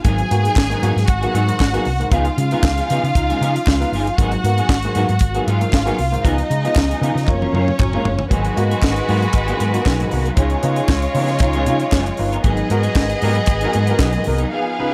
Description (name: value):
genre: disco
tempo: 116 BPM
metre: 4/4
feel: straight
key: G# dorian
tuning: A4 = 438 Hz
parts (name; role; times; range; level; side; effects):
- rich symphonic violin section; second line; 0.0-14.9 s; G#3 to G#5; -24 LUFS; equal; none
- warm concert grand piano; accompaniment; 0.0-14.9 s; G#2 to B4; -26 LUFS; equal; none
- tight funk drum kit; drums; 0.0-14.5 s; hi-hat, kick drum, snare drum, toms; -22 LUFS; equal; none
- semi-hollow electric guitar; accompaniment; 0.1-14.9 s; E#3 to A#4; -28 LUFS; equal; ensemble chorus
- hollow-body short-scale fingered electric bass; bass; 0.1-14.4 s; F#1 to C#3; -22 LUFS; equal; none
- group handclap; percussion; 0.6-14.1 s; none; -32 LUFS; equal; none
room: light reverb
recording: none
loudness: -18 LUFS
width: mono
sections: 0.0-8.3 A section; 8.3-14.9 B section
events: drum fill 7.3-8.3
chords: 0.0 G#m7; 2.1 C#9; 4.2 G#m7; 6.2 C#9; 7.3 F#maj7; 8.3 G#m7; 10.4 C#9; 12.4 G#m7